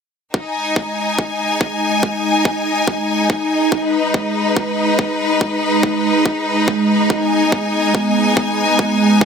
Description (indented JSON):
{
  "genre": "psychedelic trance",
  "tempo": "142 BPM",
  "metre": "4/4",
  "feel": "straight",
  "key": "G# minor",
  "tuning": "A4 = 440 Hz",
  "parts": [
    { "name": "evolving wavetable pad", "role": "sustained chords", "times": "0.7-9.2 s", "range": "G#3 to D#4", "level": "-18 LUFS", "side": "right 1 dB", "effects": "ensemble chorus, built-in reverb, phaser, vintage 12-bit sampler grit, sidechain pumping" },
    { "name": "electronic kick drum", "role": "drums", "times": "0.3-9.2 s", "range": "none", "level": "-18 LUFS", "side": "equal", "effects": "high-pass filter on kick, high-pass filter on room" },
    { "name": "bright studio string section", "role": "texture", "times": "0.3-9.2 s", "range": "D#4 to G#5", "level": "-18 LUFS", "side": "left 2 dB", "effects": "sidechain pumping" }
  ],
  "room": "moderate digital room reverb, RT60 1.1 s",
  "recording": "none",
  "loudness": "-15 LUFS",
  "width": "side -6 dB against mid",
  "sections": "0.3-9.2 A section",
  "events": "filter sweep on ambient pad 0.3-9.2",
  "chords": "0.3 G#5",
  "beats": "| 0.34 0.76 1.19 1.61 | 2.03 2.45 2.88 3.30 | 3.72 4.14 4.57 4.99 | 5.41 5.83 6.25 6.68 | 7.10 7.52 7.95 8.37 | 8.79 9.21"
}